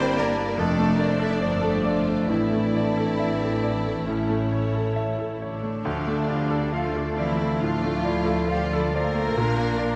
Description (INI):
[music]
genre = classical, romantic movement for piano and orchestra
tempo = 62-74 BPM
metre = 4/4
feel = rubato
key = D minor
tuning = A4 = 440 Hz
[part]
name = clear grand piano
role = melody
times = 0.0-10.0 s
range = D2 to F5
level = -29 LUFS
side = equal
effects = none
[part]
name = rich symphonic violin section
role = melody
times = 0.0-10.0 s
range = C#5 to F5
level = -41 LUFS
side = equal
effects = none
[part]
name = clear clarinet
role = second line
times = 0.0-10.0 s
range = C4 to F4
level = -36 LUFS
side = equal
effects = none
[part]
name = mellow flute section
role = second line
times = 0.0-10.0 s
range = F5 to A5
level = -42 LUFS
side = equal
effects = none
[part]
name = warm symphonic violin section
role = second line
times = 0.0-10.0 s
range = D4 to E5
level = -36 LUFS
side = equal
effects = none
[part]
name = mellow bassoon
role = accompaniment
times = 0.0-10.0 s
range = E3 to D4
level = -36 LUFS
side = equal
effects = none
[part]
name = rich symphonic viola section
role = accompaniment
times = 0.0-10.0 s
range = F3 to F4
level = -35 LUFS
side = equal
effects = none
[part]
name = dark French horn section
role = sustained chords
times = 0.0-10.0 s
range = A3 to F4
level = -34 LUFS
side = equal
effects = none
[part]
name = rich symphonic double bass section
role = bass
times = 0.0-10.0 s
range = F1 to D2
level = -33 LUFS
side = equal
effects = none
[part]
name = warm symphonic cello section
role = bass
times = 0.0-10.0 s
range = D3 to E4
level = -34 LUFS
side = equal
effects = none
[sound]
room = wet concert hall reverb, RT60 2.1 s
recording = none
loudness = -24 LUFS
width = mono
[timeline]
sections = 0.0-10.0 A section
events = none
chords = 0.0 Gm; 0.6 Dm/F; 2.3 Asus4; 4.1 A; 5.8 Dm; 9.4 Bb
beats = 0.59 1.41 | 2.29 3.19 4.07 4.96 | 5.85 6.73 7.60 8.49 | 9.38